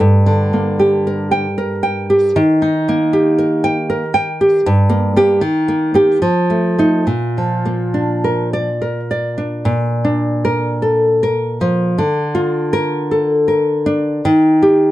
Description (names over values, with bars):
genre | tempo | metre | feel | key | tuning
romantic piece for solo classical guitar | 67-80 BPM | 3/4 | rubato | Bb major from 4.7 s | A4 = 445 Hz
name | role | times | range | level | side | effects
nylon-string guitar | solo | 0.0-14.9 s | G2 to G5 | -13 LUFS | equal | none
room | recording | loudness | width
moderate studio ambience, RT60 0.5 s | dark, warm production | -13 LUFS | side -15 dB against mid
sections
0.0-9.7 A section; 9.7-14.9 B section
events
none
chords
0.0 Gm; 2.4 Eb; 4.7 Gm; 5.4 Eb; 6.2 F7; 7.1 Bb; 12.0 Bb/D; 14.3 Eb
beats
| 0.01 0.81 1.60 | 2.38 3.14 3.90 | 4.66 5.42 6.22 | 7.07 7.96 8.82 | 9.68 10.46 11.23 | 12.00 12.75 13.51 | 14.25